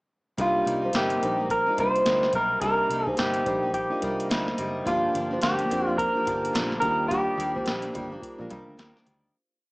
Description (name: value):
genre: indie pop, bedroom pop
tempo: 107 BPM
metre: 4/4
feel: swing 60% on 16ths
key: C minor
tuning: A4 = 438 Hz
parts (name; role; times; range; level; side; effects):
- electric guitar through a small old amp; melody; 0.4-8.7 s; F4 to C5; -25 LUFS; equal; wide subtle chorus, slapback echo
- kalimba; second line; 0.4-8.7 s; Bb3 to F5; -32 LUFS; equal; wide subtle chorus, slapback echo
- mellow tonewheel organ; accompaniment; 0.4-9.0 s; Bb3 to Bb4; -33 LUFS; equal; slow rotary speaker, cassette tape
- picked steel-string acoustic guitar; accompaniment; 0.4-9.4 s; G2 to Eb4; -33 LUFS; equal; lush chorus, warbly pitch drift
- vintage muted picked electric bass; bass; 0.4-9.3 s; F#1 to F2; -37 LUFS; equal; none
- soft vintage rhythm box; drums; 0.4-9.2 s; hi-hat, kick drum, snare drum; -32 LUFS; equal; overdrive
room: moderate studio ambience, RT60 0.5 s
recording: small speaker sound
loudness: -23 LUFS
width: side -26 dB against mid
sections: 0.4-9.3 verse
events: fade-out 7.1-9.3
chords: 0.4 Cm7; 4.9 Gm7; 6.8 Ebmaj7